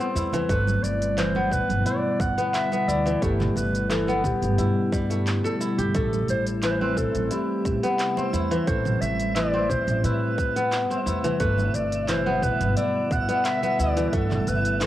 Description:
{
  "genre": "organic downtempo",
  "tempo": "88 BPM",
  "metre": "4/4",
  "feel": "straight",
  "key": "A minor",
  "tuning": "A4 = 444 Hz",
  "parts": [
    { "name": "mellow clarinet", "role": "melody", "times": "0.0-14.9 s", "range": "G4 to F#5", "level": "-28 LUFS", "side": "equal", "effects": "analog delay" },
    { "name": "warbly tape-like pad", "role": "sustained chords", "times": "0.0-14.9 s", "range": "B2 to E4", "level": "-31 LUFS", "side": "right 1 dB", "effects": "chorus, built-in reverb, phaser, sidechain pumping" },
    { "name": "kora", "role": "arpeggios", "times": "0.0-14.9 s", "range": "E3 to A4", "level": "-26 LUFS", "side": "left 2 dB", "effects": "analog delay" },
    { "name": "deep house drum kit", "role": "drums", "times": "0.0-14.9 s", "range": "handclaps, hi-hat, shaker, toms", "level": "-33 LUFS", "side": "right 1 dB", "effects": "cassette tape" },
    { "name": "upright bass", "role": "bass", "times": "0.2-14.9 s", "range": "G1 to A2", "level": "-28 LUFS", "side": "equal", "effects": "tube saturation, sidechain pumping" },
    { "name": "congas", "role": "percussion", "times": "0.3-14.6 s", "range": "none", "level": "-36 LUFS", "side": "right 7 dB", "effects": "none" },
    { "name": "electronic kick drum", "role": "drums", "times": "0.5-14.3 s", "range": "none", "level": "-28 LUFS", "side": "equal", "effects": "overdrive, cassette tape" },
    { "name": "twinkling granular texture", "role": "texture", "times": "6.3-14.9 s", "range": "E5", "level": "-40 LUFS", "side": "right 3 dB", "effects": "built-in reverb" }
  ],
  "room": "moderate spring reverb, RT60 1.7 s, small room ambience",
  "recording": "home recording on cassette",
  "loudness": "-21 LUFS",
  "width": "side -13 dB against mid",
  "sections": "0.0-14.9 A section",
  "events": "none",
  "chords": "0.5 Em7/G; 5.9 Am7; 11.4 Em7/G"
}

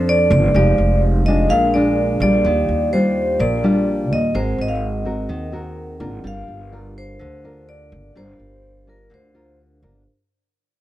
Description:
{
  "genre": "bossa nova",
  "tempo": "126 BPM",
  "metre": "4/4",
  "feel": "straight",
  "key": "G minor",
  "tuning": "A4 = 440 Hz",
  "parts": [
    { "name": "vibraphone with medium hard mallets", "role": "melody", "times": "0.0-9.6 s", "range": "Bb4 to F5", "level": "-20 LUFS", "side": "equal", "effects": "none" },
    { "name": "nylon-string guitar", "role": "accompaniment", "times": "0.0-10.0 s", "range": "Bb2 to C5", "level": "-21 LUFS", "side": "left 1 dB", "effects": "none" },
    { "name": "vibraphone with soft mallets", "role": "accompaniment", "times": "0.0-10.1 s", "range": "C4 to Gb5", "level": "-28 LUFS", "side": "right 5 dB", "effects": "none" },
    { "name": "upright bass", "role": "bass", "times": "0.0-10.0 s", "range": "F1 to F2", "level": "-21 LUFS", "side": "equal", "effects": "none" }
  ],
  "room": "small room ambience",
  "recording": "dry, close 1970s-style studio recording",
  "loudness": "-15 LUFS",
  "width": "side -14 dB against mid",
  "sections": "0.0-10.1 A section",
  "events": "fade-out 0.0-10.1",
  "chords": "0.0 Bbmaj9 (rootless); 0.5 Fm9; 1.5 Bb7; 2.4 Ebmaj9; 4.3 Ab9; 6.3 Gm7"
}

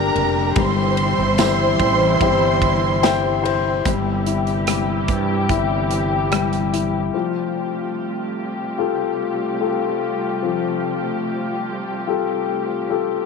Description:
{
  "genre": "pop ballad",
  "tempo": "73 BPM",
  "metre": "4/4",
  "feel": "straight",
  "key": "F major",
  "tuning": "A4 = 440 Hz",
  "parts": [
    { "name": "warm symphonic violin section", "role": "second line", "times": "0.0-3.8 s", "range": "Bb4 to C6", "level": "-21 LUFS", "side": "right 3 dB", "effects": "none" },
    { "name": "warm concert grand piano", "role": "accompaniment", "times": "0.0-13.3 s", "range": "F3 to G5", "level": "-21 LUFS", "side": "left 11 dB", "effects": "none" },
    { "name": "muted studio string section", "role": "sustained chords", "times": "0.0-13.3 s", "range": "Bb2 to G4", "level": "-24 LUFS", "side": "right 1 dB", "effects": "none" },
    { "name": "fretless electric bass", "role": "bass", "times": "0.0-7.1 s", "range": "F1 to G2", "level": "-23 LUFS", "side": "right 3 dB", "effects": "none" },
    { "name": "modern studio drum kit", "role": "drums", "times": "0.2-6.9 s", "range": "hi-hat, kick drum, ride cymbal, rim click, snare drum", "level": "-25 LUFS", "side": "right 3 dB", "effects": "none" },
    { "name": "tambourine", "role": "percussion", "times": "1.4-3.2 s", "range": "none", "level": "-32 LUFS", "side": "right 19 dB", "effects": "none" }
  ],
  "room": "light reverb, studio reverb",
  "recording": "1960s-style stereo with parts hard left and right",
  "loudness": "-18 LUFS",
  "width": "side -5 dB against mid",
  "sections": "0.0-3.9 A section; 3.9-7.1 B section; 7.1-13.3 C section",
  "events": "grand piano fill 2.6-3.9",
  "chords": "0.0 Gm; 0.6 C/G; 7.1 Fadd9"
}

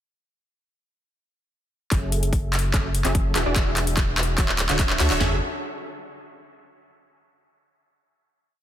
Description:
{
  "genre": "future bass",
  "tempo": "146 BPM",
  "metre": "4/4",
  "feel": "half-time",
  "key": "F# minor",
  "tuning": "A4 = 440 Hz",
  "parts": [
    { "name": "supersaw stab", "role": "riff", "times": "1.9-5.4 s", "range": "D3 to E5", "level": "-28 LUFS", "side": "right 1 dB", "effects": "sidechain pumping, low-pass filter, dub echo" },
    { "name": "saturated sub bass", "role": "bass", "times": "1.9-5.4 s", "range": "D1 to D2", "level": "-25 LUFS", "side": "equal", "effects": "sidechain pumping" },
    { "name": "trap drum kit", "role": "drums", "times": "1.9-5.3 s", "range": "handclaps, kick drum, snare drum, toms", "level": "-23 LUFS", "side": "equal", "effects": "overdrive" },
    { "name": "trap drum kit", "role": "drums", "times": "1.9-5.2 s", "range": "handclaps, hi-hat", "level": "-25 LUFS", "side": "equal", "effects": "overdrive" }
  ],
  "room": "light reverb",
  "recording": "dense, heavily limited modern master",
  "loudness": "-20 LUFS",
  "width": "side -11 dB against mid",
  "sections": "1.9-5.2 build; 5.2-6.8 final chord",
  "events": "build-up 1.9-5.2; drum fill 1.9-5.2; filter sweep on supersaw synth 1.9-5.2",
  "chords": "1.9 F#m7; 3.4 E7; 4.4 Dmaj7; 5.2 F#m7"
}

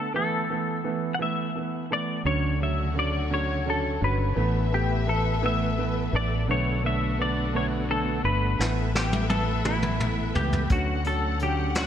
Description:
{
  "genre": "six-eight pop ballad",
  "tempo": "57 BPM (dotted quarters)",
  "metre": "6/8",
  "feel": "straight",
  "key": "unclear",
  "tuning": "A4 = 439 Hz",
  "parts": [
    { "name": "semi-hollow electric guitar", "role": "melody", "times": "0.0-11.9 s", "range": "E4 to F#5", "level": "-29 LUFS", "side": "left 2 dB", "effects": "analog chorus, ping-pong delay" },
    { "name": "clear baby grand piano", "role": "accompaniment", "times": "0.0-11.9 s", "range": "D3 to C#4", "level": "-29 LUFS", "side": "right 4 dB", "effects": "none" },
    { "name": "warm studio string section", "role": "sustained chords", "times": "2.2-11.9 s", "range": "C#3 to F#5", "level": "-34 LUFS", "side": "left 4 dB", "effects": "none" },
    { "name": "fretless electric bass", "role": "bass", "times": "2.2-11.9 s", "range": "G1 to D2", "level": "-27 LUFS", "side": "equal", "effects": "wide subtle chorus" },
    { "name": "vintage brush drum kit", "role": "drums", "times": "8.6-11.9 s", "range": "hi-hat, kick drum, snare drum, toms", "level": "-28 LUFS", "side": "left 1 dB", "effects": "gated reverb" }
  ],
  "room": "light reverb, small room ambience",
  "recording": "bright 1980s-style digital production",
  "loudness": "-23 LUFS",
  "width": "side -9 dB against mid",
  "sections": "0.0-11.9 A section",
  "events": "drum fill 8.6-10.7",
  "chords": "0.1 Asus2; 2.3 Dmaj7; 4.4 Asus2; 6.5 Bm7; 8.6 Asus2; 10.7 Dmaj7"
}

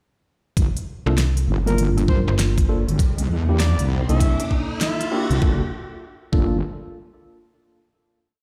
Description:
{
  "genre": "glitch hop",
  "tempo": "99 BPM",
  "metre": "4/4",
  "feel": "swing 63% on 16ths",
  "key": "G dorian",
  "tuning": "A4 = 437 Hz",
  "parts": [
    { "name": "wobble bass", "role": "bass", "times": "0.6-6.6 s", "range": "G1 to G2", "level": "-22 LUFS", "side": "equal", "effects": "chorus" },
    { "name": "electronic kick drum", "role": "drums", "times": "0.6-6.5 s", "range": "none", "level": "-22 LUFS", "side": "equal", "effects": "none" },
    { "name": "pop drum kit", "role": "drums", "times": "0.6-5.4 s", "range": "hi-hat, rim click, snare drum", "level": "-29 LUFS", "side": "equal", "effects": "none" },
    { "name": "riser", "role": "sound effects", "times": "1.6-5.4 s", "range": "none", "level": "-34 LUFS", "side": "equal", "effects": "none" },
    { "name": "tine electric piano", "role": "stabs", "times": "1.1-6.6 s", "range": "Bb3 to Bb4", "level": "-29 LUFS", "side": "equal", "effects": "analog chorus, sidechain pumping, low-pass filter, tape echo" },
    { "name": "slap-like FM bass", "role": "bass", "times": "1.1-2.9 s", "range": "G1 to C2", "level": "-22 LUFS", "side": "equal", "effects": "tube saturation" },
    { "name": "warm trumpet", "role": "melody", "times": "1.7-5.4 s", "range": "Bb4 to E5", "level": "-34 LUFS", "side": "equal", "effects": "tape echo" }
  ],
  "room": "light reverb",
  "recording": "played on a big sound system in a bare room, stone room reverb",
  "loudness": "-21 LUFS",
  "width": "mono",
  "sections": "0.6-5.4 build; 5.4-7.8 final chord",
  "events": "build-up 0.6-5.4; filter sweep on tine electric piano 0.6-5.4; riser 1.6-5.4",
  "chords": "0.6 Gm7; 3.0 C7; 5.4 Gm7"
}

